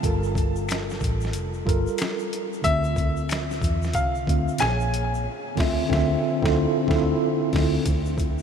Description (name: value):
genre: R&B, neo-soul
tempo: 92 BPM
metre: 4/4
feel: swing 61% on 16ths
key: D minor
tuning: A4 = 440 Hz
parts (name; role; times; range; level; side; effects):
- mellow tine electric piano; accompaniment; 0.0-7.9 s; Bb2 to F5; -25 LUFS; right 1 dB; medium stereo tremolo
- vintage muted fingered electric bass; bass; 0.0-8.4 s; F1 to E2; -26 LUFS; equal; none
- boom bap sampler-style drum kit; drums; 0.0-8.4 s; crash cymbal, finger snaps, hi-hat, kick drum, snare drum; -27 LUFS; equal; none
- tube shaker and finger snaps; percussion; 0.0-8.4 s; none; -41 LUFS; left 8 dB; none
- clear baby grand piano; melody; 2.6-5.1 s; E5 to Ab5; -30 LUFS; left 1 dB; ping-pong delay
room: moderate huge ambient reverb, RT60 7.3 s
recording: dreamy mix soaked in reverb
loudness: -21 LUFS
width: side -7 dB against mid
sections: 0.0-7.9 A section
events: band accent 5.2-7.9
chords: 0.0 Gm9; 2.6 Dm9; 4.6 Bbm7; 5.2 Dm9; 7.9 N.C.